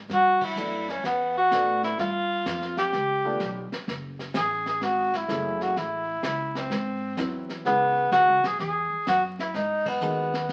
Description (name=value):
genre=jazz, small-group swing and bop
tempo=127 BPM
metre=4/4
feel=swing 67% on 8ths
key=F# minor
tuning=A4 = 440 Hz
part: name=upright bass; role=bass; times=0.0-10.5 s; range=F#1 to A2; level=-38 LUFS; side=equal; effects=none
part: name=breathy tenor saxophone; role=melody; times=0.1-10.5 s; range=B3 to G#4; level=-26 LUFS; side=equal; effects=none
part: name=vintage brush drum kit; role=drums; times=0.1-10.5 s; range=brushed snare drum, crash cymbal, hi-hat, kick drum, ride cymbal, snare drum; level=-37 LUFS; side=equal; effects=none
part: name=dark baby grand piano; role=accompaniment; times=0.6-10.3 s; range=F#3 to A#4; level=-35 LUFS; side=equal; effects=none
room=wet studio reverb, RT60 0.8 s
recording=very old 78 rpm record, vinyl crackle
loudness=-26 LUFS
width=mono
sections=0.0-7.7 A section; 7.7-10.5 B section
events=band accent 0.3, 9.8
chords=0.1 G6; 2.0 G7; 3.9 F#m7; 6.7 G#7alt; 7.7 C#m7; 9.5 G#m9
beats=| 0.10 0.57 1.04 1.51 | 1.98 2.45 2.93 3.40 | 3.87 4.34 4.82 5.29 | 5.76 6.23 6.71 7.18 | 7.65 8.12 8.60 9.07 | 9.54 10.02 10.49